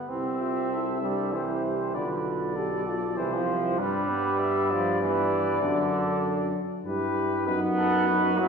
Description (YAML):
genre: classical, brass quintet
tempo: 98 BPM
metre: 3/4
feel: rubato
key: C major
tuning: A4 = 439 Hz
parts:
  - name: brilliant trombone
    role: accompaniment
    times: 0.0-8.5 s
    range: D3 to C4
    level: -28 LUFS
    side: right 2 dB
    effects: none
  - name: warm trumpet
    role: melody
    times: 0.1-8.5 s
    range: A4 to E5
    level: -33 LUFS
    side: left 6 dB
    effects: none
  - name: warm trumpet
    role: second line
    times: 0.1-8.5 s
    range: F#4 to B4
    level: -34 LUFS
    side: right 4 dB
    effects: none
  - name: warm French horn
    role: accompaniment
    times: 0.1-8.5 s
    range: B3 to G4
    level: -32 LUFS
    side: left 1 dB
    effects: none
  - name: warm tuba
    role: bass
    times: 0.1-8.5 s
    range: B1 to G2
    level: -30 LUFS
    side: equal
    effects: none
room: wet scoring stage reverb, RT60 1.6 s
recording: heard from further back in the room, nothing above 10.4 kHz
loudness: -24 LUFS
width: side -6 dB against mid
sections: 0.1-8.5 A section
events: none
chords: 0.1 C; 2.0 G7/B; 3.2 C; 3.8 G; 5.6 D/F#; 6.9 G; 7.5 B7/F#